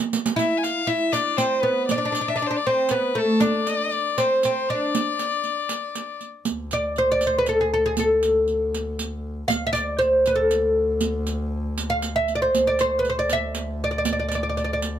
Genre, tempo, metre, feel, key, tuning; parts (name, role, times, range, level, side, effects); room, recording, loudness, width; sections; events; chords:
Arabic maqam ensemble; 118 BPM; 3/4; straight; D minor; A4 = 440 Hz
riq; percussion; 0.0-14.9 s; -28 LUFS; right 7 dB
oud; melody; 0.4-14.8 s; A3 to F5; -21 LUFS; equal
warm violin; second line; 0.4-6.2 s; A4 to G#5; -25 LUFS; left 6 dB
rich double bass; drone; 6.5-15.0 s; D2; -30 LUFS; left 1 dB
light reverb; close, detailed microphones; -20 LUFS; side -10 dB against mid
0.0-6.5 A section; 6.5-15.0 B section
drum fill 0.0-0.4